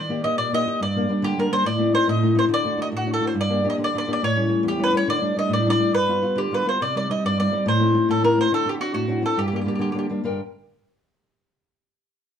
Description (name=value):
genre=italian folk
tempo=140 BPM (dotted quarters)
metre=6/8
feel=rubato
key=G harmonic minor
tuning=A4 = 445 Hz
part: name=mandolin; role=melody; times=0.0-10.1 s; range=F#4 to Eb5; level=-23 LUFS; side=right 1 dB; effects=none
part: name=nylon-string guitar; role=accompaniment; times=0.0-10.4 s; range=E2 to G5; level=-22 LUFS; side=left 1 dB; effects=none
room=moderate studio reverb, RT60 0.7 s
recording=band playing live in one room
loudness=-19 LUFS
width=side -8 dB against mid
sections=0.0-10.2 A section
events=none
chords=0.0 Eb; 0.8 Gm; 1.7 Adim; 2.5 D; 3.4 Gm; 4.2 A7; 5.1 Dsus4; 5.9 G7; 6.8 Cm; 7.7 Adim; 8.5 D7; 9.4 Gm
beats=0.38 | 0.81 1.24 | 1.66 2.08 | 2.50 2.94 | 3.37 3.81 | 4.23 4.66 | 5.08 5.51 | 5.94 6.37 | 6.81 7.24 | 7.67 8.10 | 8.52 8.95 | 9.38 9.81 | 10.25